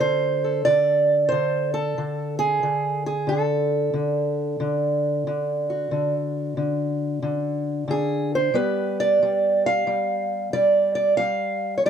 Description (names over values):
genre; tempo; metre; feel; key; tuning
acoustic country blues, solo or duo; 91 BPM; 4/4; swing 67% on 8ths; D mixolydian; A4 = 440 Hz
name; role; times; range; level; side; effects
fingerpicked acoustic archtop guitar; solo; 0.0-11.9 s; D3 to F5; -20 LUFS; right 1 dB; none
room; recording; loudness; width
wet booth ambience, RT60 0.2 s; dark, warm production; -20 LUFS; side -8 dB against mid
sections
0.0-11.9 A section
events
none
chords
0.0 D; 8.6 G